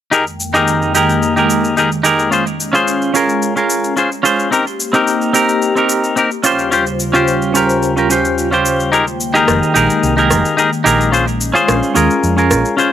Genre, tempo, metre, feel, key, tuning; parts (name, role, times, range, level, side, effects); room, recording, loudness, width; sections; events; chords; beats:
sunset chillout; 109 BPM; 4/4; straight; F minor; A4 = 440 Hz
semi-hollow electric guitar; accompaniment; 0.1-12.9 s; C4 to C5; -13 LUFS; equal; auto-pan, digital delay
airy breathy pad; sustained chords; 0.3-12.9 s; Eb2 to G5; -18 LUFS; left 1 dB; chorus
electronic shaker and rim click; drums; 0.1-12.9 s; -21 LUFS; left 1 dB
hollow-body short-scale fingered electric bass; bass; 9.5-12.6 s; F1 to F2; -18 LUFS; right 1 dB
moderate studio reverb, RT60 0.5 s; rough home demo mix; -11 LUFS; side -10 dB against mid
0.1-12.9 A section
filter sweep on analog synth pad 0.1-12.9
0.1 Fm11; 2.3 Bbm9; 4.5 Eb6/Bb; 6.5 Eb13; 8.9 Fm11 (rootless); 11.1 Bbm9
| 0.13 0.68 1.23 1.78 | 2.33 2.88 3.43 3.98 | 4.53 5.08 5.63 6.18 | 6.73 7.28 7.83 8.38 | 8.93 9.48 10.03 10.58 | 11.13 11.69 12.24 12.79